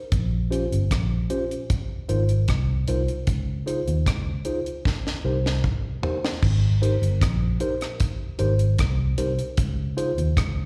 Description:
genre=lovers rock reggae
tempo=76 BPM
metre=4/4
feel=straight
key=unclear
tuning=A4 = 438 Hz
part: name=vintage muted fingered electric bass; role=bass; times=0.1-10.7 s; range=G1 to Eb2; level=-25 LUFS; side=equal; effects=none
part: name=deep reggae drum kit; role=drums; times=0.1-10.6 s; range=crash cymbal, hi-hat, kick drum, rim click, snare drum, toms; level=-27 LUFS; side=equal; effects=none
part: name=mellow tine electric piano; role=accompaniment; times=0.5-10.1 s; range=Db4 to C5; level=-31 LUFS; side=equal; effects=plate reverb, slapback echo
room=light reverb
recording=live gig heard through the venue's PA, recital hall reverb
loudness=-24 LUFS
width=mono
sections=0.0-6.4 A section; 6.4-10.7 B section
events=drum fill 4.8-6.4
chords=0.1 Bbm69; 1.7 Ab69; 3.3 Dbmaj7; 4.8 Cm7; 5.6 Eb6; 6.4 Abmaj9; 9.6 Dbmaj9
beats=| 0.12 0.91 1.70 2.48 | 3.27 4.06 4.85 5.64 | 6.43 7.22 8.00 8.79 | 9.58 10.37

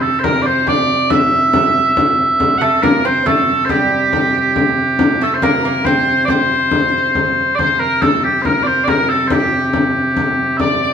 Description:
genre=medieval dance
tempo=139 BPM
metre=3/4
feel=straight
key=C mixolydian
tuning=A4 = 441 Hz
part: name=mellow small bagpipes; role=melody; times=0.0-10.9 s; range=G4 to F#5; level=-15 LUFS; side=right 2 dB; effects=none
part: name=bright shawm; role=second line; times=0.0-10.9 s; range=G4 to E5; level=-22 LUFS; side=left 1 dB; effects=none
part: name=rich viola da gamba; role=drone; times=0.0-10.9 s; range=C3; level=-22 LUFS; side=left 1 dB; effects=none
part: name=frame drum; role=percussion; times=0.2-10.8 s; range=none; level=-18 LUFS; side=left 2 dB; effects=none
part: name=lute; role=second line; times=2.6-7.3 s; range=G3 to C4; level=-23 LUFS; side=right 5 dB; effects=none
room=wet stone room reverb, RT60 1.1 s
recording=band playing live in one room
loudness=-12 LUFS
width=side -8 dB against mid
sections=0.0-7.6 A section; 7.6-10.9 B section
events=none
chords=none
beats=0.24 0.67 | 1.10 1.54 1.97 | 2.40 2.83 3.26 | 3.69 4.12 4.56 | 4.99 5.42 5.85 | 6.28 6.71 7.15 | 7.58 8.01 8.44 | 8.87 9.30 9.74 | 10.17 10.60

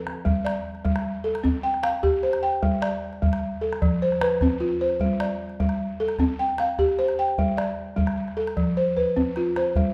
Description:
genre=west african traditional, West African string and xylophone music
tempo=101 BPM (dotted quarters)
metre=12/8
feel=straight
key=G mixolydian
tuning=A4 = 440 Hz
part: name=balafon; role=arpeggios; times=0.0-9.9 s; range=F3 to G5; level=-25 LUFS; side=equal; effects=none
part: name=calabash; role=percussion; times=0.1-9.8 s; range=none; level=-31 LUFS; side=equal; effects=none
room=moderate recital hall reverb, RT60 1.6 s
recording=recorded in a church or concert hall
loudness=-24 LUFS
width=mono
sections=0.3-9.9 A section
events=drum fill 0.0, 9.0-9.8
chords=0.3 G5; 1.4 C5; 2.6 G5; 3.8 F; 5.0 G5; 6.2 C5; 7.4 G5; 8.6 F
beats=| 0.26 0.85 1.44 2.04 | 2.63 3.22 3.82 4.41 | 5.00 5.60 6.19 6.78 | 7.38 7.97 8.57 9.16 | 9.75

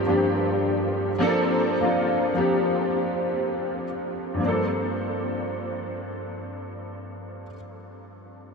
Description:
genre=R&B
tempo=free time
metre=none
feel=none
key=G minor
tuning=A4 = 440 Hz
part: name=clear concert grand piano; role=accompaniment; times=0.0-8.5 s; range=G2 to D5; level=-23 LUFS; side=equal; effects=ensemble chorus
room=wet huge ambient reverb, RT60 7.8 s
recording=dreamy mix soaked in reverb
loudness=-22 LUFS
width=side -4 dB against mid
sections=0.0-4.4 A section; 4.4-7.8 B section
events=slowing down 0.0-4.4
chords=0.0 Gm11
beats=free time

